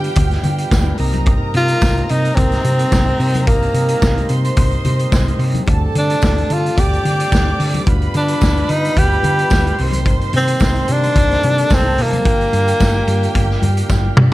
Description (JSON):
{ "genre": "disco", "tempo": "109 BPM", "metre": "4/4", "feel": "straight", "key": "G minor", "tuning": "A4 = 439 Hz", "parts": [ { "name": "breathy tenor saxophone", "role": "melody", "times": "0.0-13.9 s", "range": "Bb3 to G4", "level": "-18 LUFS", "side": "equal", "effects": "none" }, { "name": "warm studio violin section", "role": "second line", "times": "0.0-14.3 s", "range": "G4 to D6", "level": "-26 LUFS", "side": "right 1 dB", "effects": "none" }, { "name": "tonewheel organ", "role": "sustained chords", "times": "0.0-14.3 s", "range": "C3 to F4", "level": "-25 LUFS", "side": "right 2 dB", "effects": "slow rotary speaker" }, { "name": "hollow-body short-scale fingered electric bass", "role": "bass", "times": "0.0-14.3 s", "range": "G1 to D3", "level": "-18 LUFS", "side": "equal", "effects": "none" }, { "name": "vintage drum kit", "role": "drums", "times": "0.0-14.3 s", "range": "hi-hat, kick drum, snare drum, toms", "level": "-17 LUFS", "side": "equal", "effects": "none" }, { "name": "congas", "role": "percussion", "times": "0.2-14.0 s", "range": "none", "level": "-26 LUFS", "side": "left 4 dB", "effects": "none" }, { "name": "tambourine", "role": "percussion", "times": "0.7-14.0 s", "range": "none", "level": "-34 LUFS", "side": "right 15 dB", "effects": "none" } ], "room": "studio reverb", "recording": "dark, warm production", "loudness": "-13 LUFS", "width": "side -17 dB against mid", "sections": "0.0-14.3 A section", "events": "drum fill 13.9-14.3", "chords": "0.0 G7/D; 1.0 Cm7; 5.7 D7sus4; 7.9 G7/D; 9.8 Cm7; 12.3 Gm7", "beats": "0.17 0.72 | 1.27 1.82 2.37 2.92 | 3.47 4.02 4.57 5.12 | 5.67 6.22 6.77 7.32 | 7.87 8.42 8.96 9.51 | 10.06 10.61 11.16 11.71 | 12.26 12.80 13.35 13.90" }